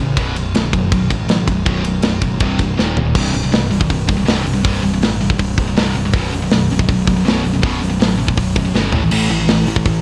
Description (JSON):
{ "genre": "heavy metal", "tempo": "161 BPM", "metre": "4/4", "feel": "straight", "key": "unclear", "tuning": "A4 = 437 Hz", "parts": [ { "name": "high-gain distorted guitar", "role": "riff", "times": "0.0-10.0 s", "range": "B1 to A3", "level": "-20 LUFS", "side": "equal", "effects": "distortion" }, { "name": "fuzz picked electric bass", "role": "bass", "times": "0.0-10.0 s", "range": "B0 to A1", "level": "-23 LUFS", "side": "equal", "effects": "overdrive" }, { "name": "tight metal drum kit", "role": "drums", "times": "0.2-9.9 s", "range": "crash cymbal, hi-hat, kick drum, ride cymbal, snare drum, toms", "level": "-20 LUFS", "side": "equal", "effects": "vintage 12-bit sampler grit" } ], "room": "light reverb", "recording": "dry, gritty hardware recording", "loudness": "-16 LUFS", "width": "mono", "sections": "0.0-3.2 A section; 3.2-10.0 B section", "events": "drum fill 2.8-3.2, 8.8-9.1", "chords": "0.2 B5; 2.4 C5; 2.8 D#5; 3.2 C5; 6.1 B5; 8.9 A5" }